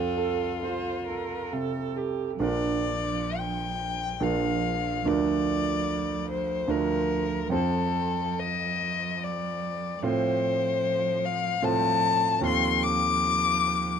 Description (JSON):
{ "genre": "classical, slow romantic movement for piano trio", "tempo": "60-76 BPM", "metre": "3/4", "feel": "rubato", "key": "Bb major", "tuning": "A4 = 444 Hz", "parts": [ { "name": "rich violin", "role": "melody", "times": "0.0-14.0 s", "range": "F4 to D6", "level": "-27 LUFS", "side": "left 6 dB", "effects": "none" }, { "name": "warm cello", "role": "second line", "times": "0.0-14.0 s", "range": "F3 to C5", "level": "-34 LUFS", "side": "right 6 dB", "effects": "none" }, { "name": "bright concert grand piano", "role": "accompaniment", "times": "0.0-14.0 s", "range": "Bb1 to C5", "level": "-28 LUFS", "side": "right 4 dB", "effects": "none" } ], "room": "light reverb", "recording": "dark, warm production", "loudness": "-24 LUFS", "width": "side -7 dB against mid", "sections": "0.0-2.4 A section; 2.4-14.0 B section", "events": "none", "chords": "0.0 F; 2.4 Bb; 5.1 Bb/D; 7.5 F; 10.0 F/A; 12.4 F7/Eb" }